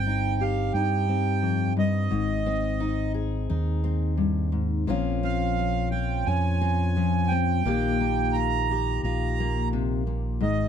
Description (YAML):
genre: acoustic folk duo or small band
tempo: 87 BPM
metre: 4/4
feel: straight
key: unclear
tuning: A4 = 441 Hz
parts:
  - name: accordion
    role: melody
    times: 0.0-10.7 s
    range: Eb5 to Bb5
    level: -29 LUFS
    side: right 9 dB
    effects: none
  - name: fingerpicked steel-string acoustic guitar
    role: accompaniment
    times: 0.0-10.7 s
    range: F2 to Ab4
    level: -28 LUFS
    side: left 7 dB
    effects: none
  - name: fingered electric bass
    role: bass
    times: 0.0-10.7 s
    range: G1 to G2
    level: -26 LUFS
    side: right 1 dB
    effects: none
room: little or no reverb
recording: close, detailed microphones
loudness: -23 LUFS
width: side -8 dB against mid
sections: 0.0-10.7 A section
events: none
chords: 0.0 Cm/G; 2.1 Ab; 4.9 Bbmadd9; 7.7 Ebadd9/Bb